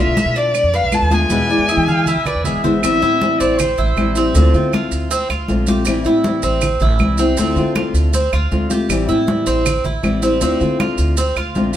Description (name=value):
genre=latin, Cuban son and guajira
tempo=158 BPM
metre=4/4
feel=straight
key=A minor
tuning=A4 = 437 Hz
part: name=warm violin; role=melody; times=0.0-2.5 s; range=D5 to A5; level=-18 LUFS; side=left 1 dB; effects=none
part: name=nylon-string guitar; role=accompaniment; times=0.0-11.8 s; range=B2 to F4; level=-19 LUFS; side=left 2 dB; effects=none
part: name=Cuban tres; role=arpeggios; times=0.0-11.7 s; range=B3 to C5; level=-22 LUFS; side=right 3 dB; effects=none
part: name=upright bass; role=bass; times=0.0-11.8 s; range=E1 to E3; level=-19 LUFS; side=equal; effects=none
part: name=congas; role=percussion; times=0.2-11.7 s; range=none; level=-23 LUFS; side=equal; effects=none
part: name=maracas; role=percussion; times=0.2-11.8 s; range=none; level=-29 LUFS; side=right 6 dB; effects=none
part: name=claves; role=percussion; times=0.5-11.6 s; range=none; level=-29 LUFS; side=right 5 dB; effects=none
part: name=warm trumpet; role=second line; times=1.5-4.3 s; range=C5 to F5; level=-20 LUFS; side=left 1 dB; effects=none
room=moderate stone room reverb, RT60 1.2 s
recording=band playing live in one room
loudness=-14 LUFS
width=side -11 dB against mid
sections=0.0-2.8 A section; 2.8-11.8 B section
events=drum fill 1.3-2.8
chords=0.0 Bm7b5; 1.3 E; 2.8 Am7; 4.4 Dm7; 5.9 Am7; 7.4 Dm7; 8.9 Am7; 10.4 Dm7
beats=0.17 0.55 0.93 | 1.31 1.70 2.08 2.46 | 2.84 3.22 3.60 3.98 | 4.36 4.73 5.11 5.49 | 5.87 6.25 6.63 7.01 | 7.38 7.76 8.14 8.52 | 8.90 9.28 9.66 10.04 | 10.41 10.79 11.17 11.55